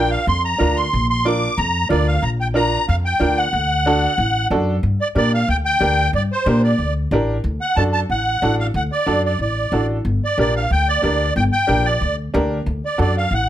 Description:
latin; 184 BPM; 4/4; straight; G harmonic minor from 4.8 s; A4 = 440 Hz
musette accordion; melody; 0.0-13.5 s; C5 to D6; -19 LUFS; right 1 dB
bright upright piano; accompaniment; 0.0-13.2 s; D4 to Bb4; -21 LUFS; right 1 dB
upright bass; bass; 0.0-13.5 s; G1 to Bb2; -20 LUFS; equal
little or no reverb; close, detailed microphones; -16 LUFS; side -12 dB against mid
0.0-4.8 A section; 4.8-13.5 B section
0.0 Bb; 3.5 D; 4.8 Gm; 7.4 D; 10.1 Gm; 12.7 D

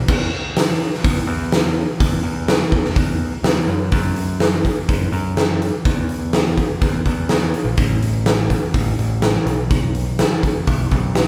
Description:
classic rock; 124 BPM; 4/4; straight; A4 = 439 Hz
growling picked electric bass; bass; 0.0-11.3 s; A1 to F#2; -24 LUFS; equal; overdrive
big rock drum kit; drums; 0.1-11.3 s; crash cymbal, hi-hat, kick drum, snare drum; -20 LUFS; equal
light reverb; band playing live in one room; -19 LUFS; mono
0.0-3.9 A section; 3.9-11.3 B section

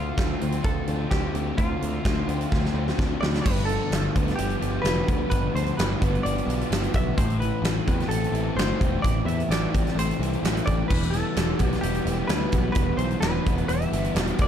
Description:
rock, shoegaze and dream pop; 129 BPM; 4/4; straight; G mixolydian; A4 = 439 Hz
direct-recorded clean electric guitar; melody; 0.0-14.5 s; F4 to E5; -31 LUFS; equal; lush chorus, tape echo
raw garage guitar; riff; 0.0-14.5 s; E2 to F4; -31 LUFS; right 12 dB; overdrive, reverse reverb
thick fuzz guitar; riff; 0.0-14.5 s; G2 to F4; -30 LUFS; left 11 dB; distortion, analog chorus
picked electric bass; bass; 0.0-14.5 s; E1 to E2; -28 LUFS; equal
huge arena drum kit; drums; 0.2-14.5 s; crash cymbal, hi-hat, kick drum, snare drum; -26 LUFS; equal
small room reverb; dark, warm production; -22 LUFS; side -9 dB against mid
0.0-3.4 A section; 3.4-14.5 B section
drum fill 2.5-3.4
0.0 Dm7; 3.4 G7; 7.2 Am; 10.9 Em

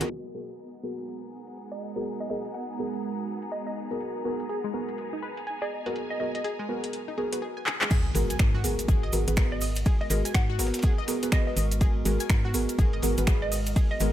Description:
deep house; 123 BPM; 4/4; swing 61% on 16ths; G# minor; A4 = 440 Hz
hollow soft pad; sustained chords; 0.0-14.1 s; G#3 to D#5; -38 LUFS; right 3 dB; chorus, sidechain pumping
analog pluck; arpeggios; 0.0-0.1, 4.5-14.1 s; G#3 to G#5; -37 LUFS; left 2 dB; chorus, sidechain pumping, digital delay
deep mellow chord stab; stabs; 0.0-14.1 s; B3 to B4; -32 LUFS; equal; chorus, sidechain pumping, ping-pong delay
crunchy breakbeat drum kit; drums; 0.0-0.1, 7.9-14.1 s; hi-hat, ride cymbal, snare drum; -44 LUFS; equal; high-pass filter on cymbals, high-pass filter on hats, high-pass filter on snare, high-pass filter on room
deep house drum kit; drums; 0.0-14.1 s; crash cymbal, finger snaps, handclaps, hi-hat; -32 LUFS; equal; overdrive, low-pass filter on hats, low-pass filter on snare, low-pass filter on cymbals, low-pass filter on room
bright symphonic string section; texture; 0.0-7.4 s; E3 to B5; -40 LUFS; left 1 dB; sidechain pumping
hollow square pluck; melody; 1.7-14.1 s; D#5 to F#5; -36 LUFS; right 2 dB; lush chorus, ping-pong delay
electronic kick drum; drums; 7.9-13.9 s; -23 LUFS; equal; overdrive
cabasa; percussion; 7.9-14.1 s; -38 LUFS; right 6 dB
impact; sound effects; 7.9-9.9 s; -34 LUFS; equal
organ-like FM bass; bass; 8.2-14.1 s; G#1 to G#2; -28 LUFS; equal; tube saturation, sidechain pumping
light reverb, small room ambience; low-pass filter; -25 LUFS; side -12 dB against mid
0.1-7.9 A section; 7.9-14.1 B section
filter sweep on analog synth pad 0.1-7.9; filter sweep 0.1-7.9; drum fill 7.7; drop 7.9-14.1; impact 7.9-9.9
0.1 G#m9

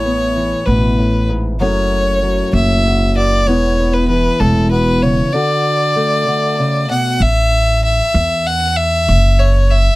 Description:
indie folk with a building arrangement; 64 BPM (dotted quarters); 6/8; straight; A major; A4 = 441 Hz
clear fiddle; melody; 0.0-10.0 s; A4 to F#5; -16 LUFS; equal
fingerpicked acoustic archtop guitar; accompaniment; 0.0-7.2 s; E2 to F#4; -18 LUFS; left 2 dB
upright bass; bass; 0.0-9.9 s; E1 to E2; -15 LUFS; equal
little or no reverb; dry, close 1970s-style studio recording; -12 LUFS; side -20 dB against mid
0.0-7.2 A section; 7.2-10.0 B section
0.0 Asus2; 1.6 F#m7; 3.5 Asus2/E; 5.3 D; 7.2 A5; 9.1 F#5

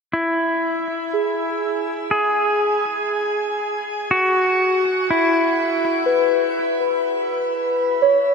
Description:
ambient; 61 BPM; 4/4; straight; A4 = 442 Hz
pedal steel guitar; melody; 0.1-6.0 s; E4 to G#4; -19 LUFS; equal; ping-pong delay
muted felt-like synth keys; arpeggios; 1.1-8.3 s; G#4 to C#5; -22 LUFS; equal; chorus, ping-pong delay
wet shimmer reverb, RT60 6.8 s; -17 LUFS; side -5 dB against mid
0.1-8.3 A section
fade-in on synth keys 0.1-8.3; fade-in on pedal steel guitar 0.1-8.3
0.1 E

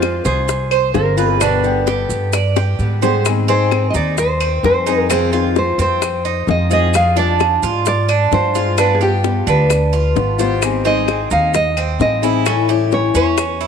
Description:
latin, Cuban son and guajira; 130 BPM; 4/4; straight; A4 = 440 Hz
nylon-string guitar; melody; 0.0-13.7 s; G4 to F5; -19 LUFS; equal
picked old ladder-braced acoustic guitar; accompaniment; 0.0-13.4 s; B2 to Ab4; -21 LUFS; left 11 dB
Cuban tres; arpeggios; 0.0-13.7 s; C4 to D5; -20 LUFS; right 11 dB
upright bass; bass; 0.0-13.7 s; G1 to Ab2; -19 LUFS; right 1 dB
bongos; percussion; 0.0-13.6 s; -24 LUFS; left 14 dB
claves; percussion; 0.0-13.6 s; -28 LUFS; left 11 dB
maracas; percussion; 0.0-13.7 s; -29 LUFS; right 16 dB
moderate plate reverb, RT60 3.2 s; 1960s-style stereo with parts hard left and right; -13 LUFS; side -7 dB against mid
0.0-3.3 A section; 3.3-13.7 B section
drum fill 2.6-3.3
0.0 Fm; 1.4 G; 3.3 Abmaj7; 5.1 Fm7; 6.9 Ddim/F; 8.8 G7; 10.6 Abmaj7; 12.5 A7

